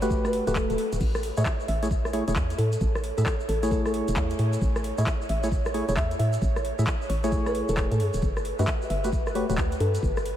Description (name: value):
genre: UK garage, two-step garage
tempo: 133 BPM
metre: 4/4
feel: swing 63% on 16ths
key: A major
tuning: A4 = 440 Hz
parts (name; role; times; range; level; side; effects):
- bell-like FM electric piano; melody; 0.0-10.2 s; A4 to E5; -32 LUFS; left 1 dB; chorus, diffuse ambient delay
- percussive organ stab; stabs; 0.0-9.5 s; A3 to E5; -30 LUFS; equal; chorus, diffuse ambient delay
- hollow knocking FM bass; bass; 0.0-10.3 s; D1 to A2; -27 LUFS; equal; none
- garage drum kit; drums; 0.0-10.4 s; crash cymbal, handclaps, hi-hat, rim click; -34 LUFS; equal; none
- tube shaker; percussion; 0.0-10.2 s; none; -46 LUFS; right 2 dB; none
- electronic kick drum; drums; 0.1-10.1 s; none; -28 LUFS; equal; none
- swell; sound effects; 0.4-1.0 s; none; -38 LUFS; right 2 dB; none
- airy breathy pad; sustained chords; 1.0-10.4 s; B4 to C#5; -38 LUFS; right 2 dB; chorus, sidechain pumping
room: moderate huge ambient reverb, RT60 4.5 s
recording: dreamy mix soaked in reverb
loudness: -23 LUFS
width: side -11 dB against mid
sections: 0.0-10.4 A section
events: swell 0.4-1.0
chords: 0.0 Gmaj9; 1.0 Amaj7; 8.0 Gmaj9